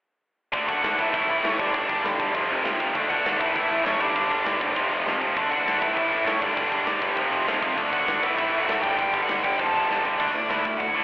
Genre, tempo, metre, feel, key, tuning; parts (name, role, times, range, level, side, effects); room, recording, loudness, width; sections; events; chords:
punk rock; 199 BPM; 4/4; straight; A4 = 440 Hz
tight distorted guitar; riff; 0.5-11.0 s; F2 to D4; -23 LUFS; equal; distortion, slapback echo
fuzz picked electric bass; bass; 0.5-11.0 s; E1 to A2; -34 LUFS; equal; overdrive
tight metal drum kit; drums; 0.5-10.9 s; crash cymbal, hi-hat, kick drum, snare drum, toms; -32 LUFS; equal
nasal lead guitar with a parked wah; melody; 0.7-11.0 s; C#4 to A5; -26 LUFS; equal; overdrive, digital delay
small room reverb; live gig heard through the venue's PA, recital hall reverb, telephone sound; -21 LUFS; side -19 dB against mid
0.5-10.2 A section
drum fill 5.1-5.4, 9.9-10.2
0.5 D; 1.0 A; 1.6 G5; 2.3 F5; 2.9 D; 3.4 A; 4.0 G5; 4.8 F5; 5.4 D; 5.8 A; 6.4 G5; 7.2 F5; 7.8 D; 8.2 A5; 8.8 G5; 9.6 F; 9.9 G5; 10.2 D